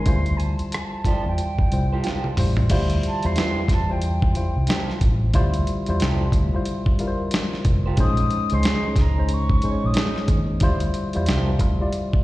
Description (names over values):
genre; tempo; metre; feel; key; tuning
R&B, neo-soul; 91 BPM; 4/4; swing 61% on 16ths; D minor; A4 = 442 Hz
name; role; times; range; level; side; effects
mellow concert flute; melody; 0.0-10.3 s; G5 to Eb6; -30 LUFS; equal; slapback echo
tine electric piano; accompaniment; 0.0-12.2 s; G3 to D5; -26 LUFS; left 2 dB; slapback echo
vintage muted fingered electric bass; bass; 0.0-11.8 s; F1 to E2; -22 LUFS; equal; none
dusty soul sampler-style drum kit; drums; 0.1-12.2 s; crash cymbal, hi-hat, kick drum, rim click, snare drum, toms; -22 LUFS; equal; none
electric guitar through a small old amp; second line; 1.1-11.5 s; Eb4 to Db5; -32 LUFS; right 7 dB; spring reverb, slapback echo
room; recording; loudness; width
digital ambience; live gig heard through the venue's PA, recital hall reverb; -19 LUFS; side -17 dB against mid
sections
0.0-2.7 A section; 2.7-12.2 B section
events
drum fill 2.0-2.7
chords
0.1 Dm11; 8.0 Bbm11; 10.6 Dm11